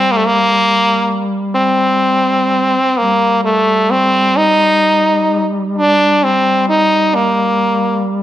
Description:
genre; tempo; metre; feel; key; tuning
caucasian folk, Caucasian lament; 64 BPM; 3/4; rubato; G minor; A4 = 440 Hz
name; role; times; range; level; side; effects
stopped French horn; melody; 0.0-8.1 s; A3 to Eb4; -12 LUFS; equal; none
mellow duduk; drone; 0.0-8.2 s; G3; -19 LUFS; equal; none
room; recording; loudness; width
moderate recital hall reverb, RT60 1.6 s; dark, warm production; -11 LUFS; side -12 dB against mid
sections
0.0-8.2 A section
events
none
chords
none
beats
| 0.11 1.05 2.01 | 2.97 3.91 4.85 | 5.77 6.69 7.60

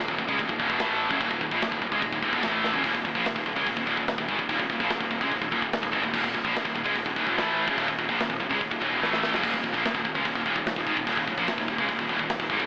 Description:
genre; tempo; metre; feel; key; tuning
heavy metal; 146 BPM; 4/4; straight; unclear; A4 = 438 Hz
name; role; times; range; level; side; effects
scooped high-gain guitar; riff; 0.0-12.7 s; Eb2 to A3; -25 LUFS; equal; distortion
fuzz picked electric bass; bass; 0.0-12.7 s; Eb1 to Db2; -35 LUFS; equal; overdrive
tight metal drum kit; drums; 0.1-12.7 s; crash cymbal, hi-hat, kick drum, snare drum, toms; -30 LUFS; equal; none
room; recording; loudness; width
wet lush hall reverb, RT60 2.3 s; big arena sound, AM radio sound; -24 LUFS; side -35 dB against mid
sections
0.0-2.8 A section; 2.8-12.7 B section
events
drum fill 2.6, 9.0-9.4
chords
0.0 Ebm; 2.8 Eb5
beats
0.38 0.79 | 1.20 1.61 2.03 2.44 | 2.85 3.26 3.67 4.08 | 4.49 4.90 5.31 5.72 | 6.13 6.54 6.96 7.37 | 7.78 8.19 8.60 9.01 | 9.42 9.83 10.24 10.65 | 11.07 11.48 11.89 12.30

